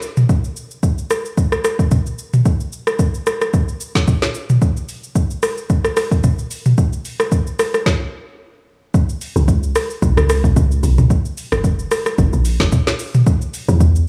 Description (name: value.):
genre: amapiano.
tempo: 111 BPM.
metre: 4/4.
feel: swing 55% on 16ths.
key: unclear.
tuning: A4 = 440 Hz.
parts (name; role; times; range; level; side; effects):
smooth R&B drum kit; drums; 0.0-14.1 s; hi-hat, kick drum, rim click, shaker, snare drum, toms; -18 LUFS; equal; overdrive.
deep log drum bass; bass; 9.4-14.0 s; F#1 to E2; -17 LUFS; equal; none.
room: light reverb.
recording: studio reverb.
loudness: -17 LUFS.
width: mono.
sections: 0.0-8.9 A section; 8.9-14.1 B section.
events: stop 7.9-8.9; drop 8.9-14.1.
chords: none.